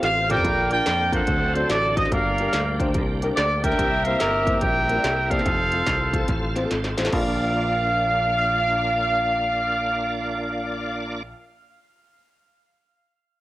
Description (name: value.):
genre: uptempo gospel.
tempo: 144 BPM.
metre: 4/4.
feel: swing 64% on 8ths.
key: Bb major.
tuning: A4 = 437 Hz.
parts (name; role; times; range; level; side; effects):
mellow horn section; melody; 0.0-11.2 s; G4 to G5; -22 LUFS; right 1 dB; plate reverb.
clean electric guitar; second line; 0.0-0.7 s; A4 to C5; -33 LUFS; right 2 dB; cassette tape, plate reverb.
dark upright piano; accompaniment; 0.0-11.3 s; Bb1 to D5; -30 LUFS; left 2 dB; cassette tape, plate reverb.
bright tonewheel organ; sustained chords; 0.0-11.2 s; F#3 to A5; -30 LUFS; right 1 dB; overdrive, chorus vibrato, slow rotary speaker, cassette tape, plate reverb.
fingered electric bass; bass; 0.0-11.3 s; F1 to F2; -28 LUFS; equal; transformer saturation.
industrial drum kit; drums; 0.0-7.3 s; crash cymbal, hi-hat, kick drum, snare drum, toms; -27 LUFS; equal; cassette tape.
room: light reverb.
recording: home recording on cassette.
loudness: -20 LUFS.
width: side -16 dB against mid.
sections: 0.4-7.1 A section; 7.1-10.5 B section.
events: drum fill 0.0-0.4, 6.7-7.1; tonewheel organ fill 5.9-7.1.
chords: 0.4 Bb; 1.3 D7; 2.1 Gm; 3.8 C7; 5.5 F; 7.1 Bb.